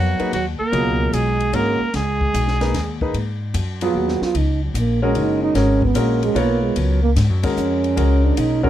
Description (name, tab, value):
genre	modal jazz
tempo	149 BPM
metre	3/4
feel	swing 67% on 8ths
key	G# dorian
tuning	A4 = 440 Hz
part	clear trumpet	melody	0.0-3.0 s	F#4 to A#4	-23 LUFS	left 1 dB	none
part	breathy trombone	second line	0.0-8.7 s	F#3 to F#4	-22 LUFS	right 6 dB	none
part	clear baby grand piano	accompaniment	0.0-8.7 s	B2 to E#5	-23 LUFS	left 2 dB	none
part	upright bass	bass	0.0-8.7 s	F#1 to G#2	-20 LUFS	left 1 dB	none
part	compact cocktail drum kit	drums	0.2-8.7 s	hi-hat, kick drum, ride cymbal, snare drum	-30 LUFS	left 1 dB	none
room	light reverb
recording	close, detailed microphones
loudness	-17 LUFS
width	side -12 dB against mid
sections	0.0-3.1 A section; 3.1-8.7 B section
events	trombone solo 3.1-8.7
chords	0.0 C#13sus4; 3.1 G#13sus4; 8.0 C#13sus4